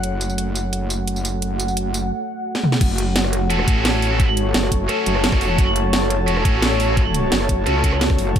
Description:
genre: dark technical drum and bass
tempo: 173 BPM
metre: 4/4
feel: straight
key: F# minor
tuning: A4 = 440 Hz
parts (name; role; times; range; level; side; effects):
- deep dark ambient pad; sustained chords; 0.0-8.4 s; A3 to F#5; -25 LUFS; equal; chorus, built-in reverb, sidechain pumping
- metallic wobble bass; bass; 0.0-8.4 s; F#1 to C#2; -22 LUFS; equal; chorus, overdrive, sidechain pumping
- drum and bass drum kit; drums; 0.0-8.4 s; crash cymbal, hi-hat, rim click, snare drum, tambourine, toms; -22 LUFS; right 1 dB; overdrive
- airy breathy pad; texture; 0.0-8.4 s; F#4 to A5; -28 LUFS; left 1 dB; chorus, sidechain pumping
- electronic kick drum; drums; 2.8-8.4 s; none; -18 LUFS; equal; none
- heavy high-gain guitar; stabs; 3.5-7.9 s; C#4 to A4; -24 LUFS; right 3 dB; distortion, dub echo
room: light reverb, digital ambience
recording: none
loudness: -17 LUFS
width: side -9 dB against mid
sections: 0.0-2.8 A section; 2.8-8.4 B section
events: filter sweep on drum 0.0-2.8; filter sweep on ambient pad 0.0-2.8; drum fill 2.5; drop 2.8-8.4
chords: 0.0 F#m

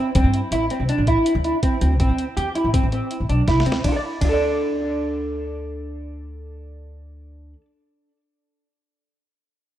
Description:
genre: progressive instrumental, band music in an uneven meter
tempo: 162 BPM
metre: 5/4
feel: straight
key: unclear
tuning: A4 = 440 Hz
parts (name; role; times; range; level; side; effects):
- electric guitar at the edge of break-up; arpeggios; 0.0-7.7 s; C4 to D5; -22 LUFS; right 1 dB; analog chorus, digital delay
- boom bap sampler-style drum kit; drums; 0.1-4.3 s; hi-hat, kick drum, ride cymbal, snare drum; -22 LUFS; equal; none
- upright bass; bass; 0.2-7.5 s; A1 to G2; -23 LUFS; equal; none
room: light reverb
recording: rough home demo mix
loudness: -18 LUFS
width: side -12 dB against mid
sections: 0.0-3.8 A section; 3.8-7.5 B section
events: drum fill 3.5-3.8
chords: 0.0 Am; 3.8 D5

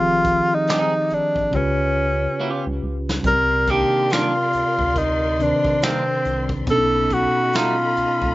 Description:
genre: R&B, neo-soul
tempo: 70 BPM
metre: 4/4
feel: swing 61% on 16ths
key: unclear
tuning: A4 = 440 Hz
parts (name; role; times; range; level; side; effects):
- breathy tenor saxophone; melody; 0.0-8.3 s; C4 to Bb4; -19 LUFS; equal; none
- bell-like tine electric piano; accompaniment; 0.0-8.3 s; B2 to D5; -24 LUFS; equal; fast stereo tremolo, slapback echo
- rubbery square bass; bass; 0.0-8.3 s; F1 to D2; -27 LUFS; equal; none
- vintage brush drum kit; drums; 0.2-8.3 s; finger snaps, hi-hat, kick drum, snare drum; -27 LUFS; equal; none
- clean electric guitar; second line; 0.7-7.7 s; Eb3 to Ab4; -26 LUFS; right 4 dB; none
- dark symphonic string section; sustained chords; 3.2-8.3 s; A4 to C6; -32 LUFS; left 3 dB; none
room: little or no reverb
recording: nothing above 7.6 kHz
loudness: -17 LUFS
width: side -18 dB against mid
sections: 0.0-8.3 A section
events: drum fill 1.5-3.2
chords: 0.0 Fm7; 1.5 C#7#11; 3.2 Cm9; 6.7 B7

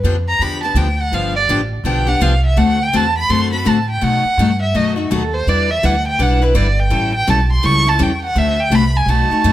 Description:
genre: acoustic string swing (jazz manouche)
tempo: 166 BPM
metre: 4/4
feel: swing 62% on 8ths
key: D mixolydian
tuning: A4 = 440 Hz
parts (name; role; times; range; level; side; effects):
- picked steel-string acoustic guitar; accompaniment; 0.0-9.5 s; B2 to B4; -19 LUFS; left 4 dB; none
- upright bass; bass; 0.0-9.5 s; G1 to B2; -17 LUFS; right 1 dB; none
- warm violin; melody; 0.3-9.5 s; F#4 to C#6; -17 LUFS; right 2 dB; none
room: light reverb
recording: none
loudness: -13 LUFS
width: side -13 dB against mid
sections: 0.0-9.5 A section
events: violin solo 0.0-9.5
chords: 0.0 G7; 2.6 D7; 4.0 B7; 5.5 Em7; 6.9 A7; 8.4 D7

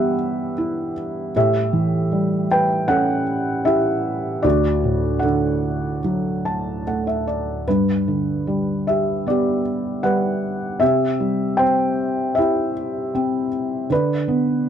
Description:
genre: classical, lyrical solo piano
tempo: 77 BPM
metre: 4/4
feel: rubato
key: G major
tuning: A4 = 440 Hz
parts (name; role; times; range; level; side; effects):
- felt-muted upright piano; solo; 0.0-14.7 s; D2 to A5; -18 LUFS; equal; none
room: light reverb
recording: dark, warm production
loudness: -18 LUFS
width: side -8 dB against mid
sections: 0.0-14.7 A section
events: felt piano fill 6.0-7.7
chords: 0.0 Em/G; 1.4 A7; 4.4 D; 7.7 G; 10.8 C; 13.9 G/D (rootless)

